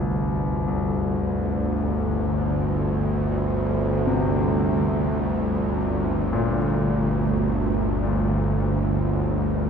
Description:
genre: dark ambient drone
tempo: free time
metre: none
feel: none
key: G minor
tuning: A4 = 438 Hz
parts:
  - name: clear grand piano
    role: arpeggios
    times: 0.0-9.7 s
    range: C2 to C3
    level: -29 LUFS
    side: left 3 dB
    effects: ping-pong delay
  - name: bowed-like drone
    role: drone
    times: 0.0-9.7 s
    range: G1 to D2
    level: -22 LUFS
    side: equal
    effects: built-in reverb
room: wet plate reverb, RT60 2.9 s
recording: dreamy mix soaked in reverb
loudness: -21 LUFS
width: side -7 dB against mid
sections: 0.0-9.7 A section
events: none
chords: 0.0 G5

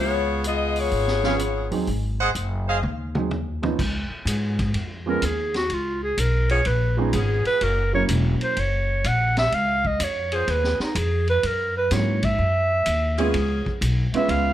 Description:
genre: jazz, big band swing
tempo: 126 BPM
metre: 4/4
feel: swing 67% on 8ths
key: Db mixolydian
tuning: A4 = 439 Hz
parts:
  - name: clear saxophone section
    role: melody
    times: 0.0-1.7 s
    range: Cb4 to Eb5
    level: -23 LUFS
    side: left 4 dB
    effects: none
  - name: upright bass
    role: bass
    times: 0.0-14.5 s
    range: Fb1 to Ab2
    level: -24 LUFS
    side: equal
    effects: none
  - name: vintage drum kit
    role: drums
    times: 0.4-14.4 s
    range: crash cymbal, hi-hat, kick drum, ride cymbal, snare drum, toms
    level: -31 LUFS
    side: equal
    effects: none
  - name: warm upright piano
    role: accompaniment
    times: 1.2-8.5, 11.9-14.5 s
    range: F3 to Db5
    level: -27 LUFS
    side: right 5 dB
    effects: none
  - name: clear trumpet section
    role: stabs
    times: 1.2-2.8 s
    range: Ab4 to Gb5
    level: -26 LUFS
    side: right 2 dB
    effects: none
  - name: warm saxophone section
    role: sustained chords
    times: 4.3-13.8 s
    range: Fb3 to Ab4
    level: -31 LUFS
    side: left 1 dB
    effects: none
  - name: clear clarinet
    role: melody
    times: 5.1-14.5 s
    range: Eb4 to Gb5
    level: -23 LUFS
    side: right 2 dB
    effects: none
room: light reverb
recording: none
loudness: -20 LUFS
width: side -12 dB against mid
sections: 0.0-3.8 A section; 3.8-14.5 B section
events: drum fill 2.8-3.8; clarinet solo 3.8-14.5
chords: 0.0 Db7; 1.9 Ab7; 3.8 Db7; 7.6 Gb7; 9.5 Db7; 11.4 Gb7; 13.3 Db7

